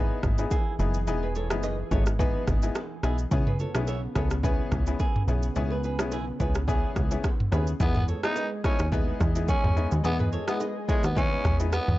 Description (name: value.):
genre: afrobeats.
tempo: 107 BPM.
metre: 4/4.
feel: swing 55% on 16ths.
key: unclear.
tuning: A4 = 440 Hz.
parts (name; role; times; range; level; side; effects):
clear grand piano; accompaniment; 0.0-11.7 s; B3 to G#4; -33 LUFS; left 6 dB; none.
lush unison pad; sustained chords; 0.0-12.0 s; C#3 to D#5; -38 LUFS; equal; chorus.
flamenco guitar; riff; 0.0-11.4 s; E4 to E5; -37 LUFS; right 4 dB; tape echo.
plucky analog bass; bass; 0.0-12.0 s; E1 to E2; -27 LUFS; equal; none.
afro-pop drum kit; drums; 0.2-12.0 s; kick drum, rim click, shaker, toms; -27 LUFS; equal; none.
congas and bongos; percussion; 0.2-11.9 s; none; -38 LUFS; right 3 dB; none.
growling tenor saxophone; melody; 7.8-12.0 s; G#3 to D#4; -31 LUFS; equal; none.
room: little or no reverb.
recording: dark, warm production, nothing above 7.8 kHz.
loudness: -24 LUFS.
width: side -17 dB against mid.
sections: 0.0-7.8 A section; 7.8-12.0 B section.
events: none.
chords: 0.0 Emaj7; 3.3 C#m7.